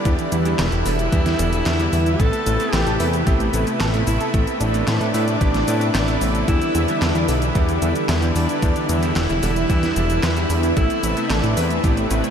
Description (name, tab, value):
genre	synthwave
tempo	112 BPM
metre	4/4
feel	straight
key	A minor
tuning	A4 = 440 Hz
part	breathy alto saxophone	melody	0.0-11.6 s	D4 to A4	-25 LUFS	equal	tape echo
part	string machine, violins	second line	0.0-11.6 s	D5 to A5	-31 LUFS	equal	ensemble chorus, cassette tape, diffuse ambient delay
part	lush unison pad	sustained chords	0.0-12.3 s	C3 to B4	-25 LUFS	equal	chorus, sidechain pumping
part	bright electric grand piano	stabs	0.0-12.3 s	G3 to B4	-28 LUFS	right 2 dB	diffuse ambient delay
part	mellow electric guitar	riff	0.1-12.3 s	E3 to A4	-31 LUFS	right 4 dB	none
part	fat analog bass	bass	0.1-12.2 s	E1 to A2	-21 LUFS	equal	none
part	electronic kick drum	drums	0.1-11.9 s	none	-20 LUFS	equal	none
part	pop drum kit	drums	0.1-12.3 s	cabasa, handclaps, hi-hat, snare drum	-27 LUFS	equal	overdrive
room	moderate huge ambient reverb, RT60 8.0 s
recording	dreamy mix soaked in reverb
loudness	-17 LUFS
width	side -8 dB against mid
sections	0.0-12.3 A section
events	none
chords	0.0 Em7; 2.2 Amadd9; 6.5 Em7; 10.8 Amadd9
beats	| 0.05 0.59 1.12 1.66 | 2.20 2.73 3.27 3.80 | 4.34 4.87 5.41 5.95 | 6.48 7.02 7.55 8.09 | 8.62 9.16 9.70 10.23 | 10.77 11.30 11.84